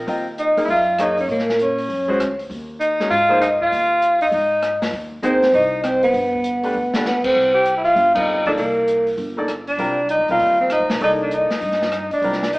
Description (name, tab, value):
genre	modal jazz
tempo	198 BPM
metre	4/4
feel	swing 63% on 8ths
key	C dorian from 7.4 s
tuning	A4 = 436 Hz
part	clear concert grand piano	accompaniment	0.0-12.4 s	F3 to Eb5	-24 LUFS	equal	none
part	upright bass	bass	0.0-12.6 s	G1 to Bb2	-32 LUFS	equal	none
part	open jazz drum kit	drums	0.1-12.6 s	crash cymbal, hi-hat, kick drum, rim click, snare drum	-28 LUFS	equal	none
part	vibraphone with soft mallets	melody	0.4-12.6 s	Bb4 to G5	-18 LUFS	equal	none
part	breathy tenor saxophone	second line	0.4-12.6 s	Bb3 to G4	-21 LUFS	equal	none
room	wet stone room reverb, RT60 1.1 s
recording	band playing live in one room, AM radio sound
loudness	-16 LUFS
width	side -23 dB against mid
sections	0.0-7.4 A section; 7.4-12.6 B section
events	drum fill 6.8-7.1; band accent 7.2, 8.1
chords	0.0 Ebm11; 2.5 Ab/Eb; 6.1 G; 7.4 Cm11